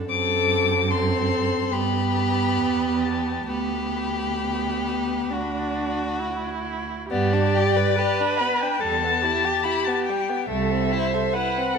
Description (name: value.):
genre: classical, slow romantic movement for string quartet.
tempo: 64-75 BPM.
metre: 4/4.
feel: rubato.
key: G major.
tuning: A4 = 440 Hz.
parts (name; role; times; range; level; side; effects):
warm violin; second line; 0.0-11.8 s; G3 to B4; -28 LUFS; left 3 dB; none.
rich viola; accompaniment; 0.0-11.8 s; B3 to C5; -26 LUFS; right 4 dB; none.
warm cello; bass; 0.0-11.2 s; C2 to G2; -27 LUFS; right 5 dB; none.
dark violin; melody; 0.1-11.8 s; D5 to D6; -26 LUFS; left 9 dB; none.
room: moderate scoring stage reverb, RT60 1.9 s.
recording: none.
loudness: -21 LUFS.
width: side -6 dB against mid.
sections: 0.0-7.1 A section; 7.1-11.8 B section.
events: none.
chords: 0.1 D7/F#; 1.7 G; 3.5 G/D; 5.3 D; 7.1 G; 8.8 Em; 10.5 Am/C.